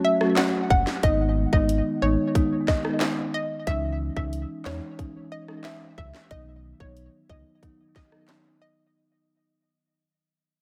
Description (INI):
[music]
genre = dancehall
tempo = 91 BPM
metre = 4/4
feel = straight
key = unclear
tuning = A4 = 440 Hz
[part]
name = analog pluck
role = melody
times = 0.0-8.7 s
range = C#5 to F#5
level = -30 LUFS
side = equal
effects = chorus, dub echo
[part]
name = marimba with medium mallets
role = accompaniment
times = 0.2-8.3 s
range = D#3 to F#4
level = -29 LUFS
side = equal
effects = sidechain pumping, dub echo
[part]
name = island pop drum kit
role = drums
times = 0.2-8.4 s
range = handclaps, hi-hat, kick drum, rim click, snare drum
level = -28 LUFS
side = equal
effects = none
[part]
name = sub bass with octave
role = bass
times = 0.7-7.4 s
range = F#1 to E2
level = -30 LUFS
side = equal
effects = none
[sound]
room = digital ambience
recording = echo-heavy mix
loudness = -24 LUFS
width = mono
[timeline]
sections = 0.0-8.9 A section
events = fade-out 0.0-8.9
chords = 0.0 F#m; 1.0 G#m; 3.7 C#madd9; 6.3 B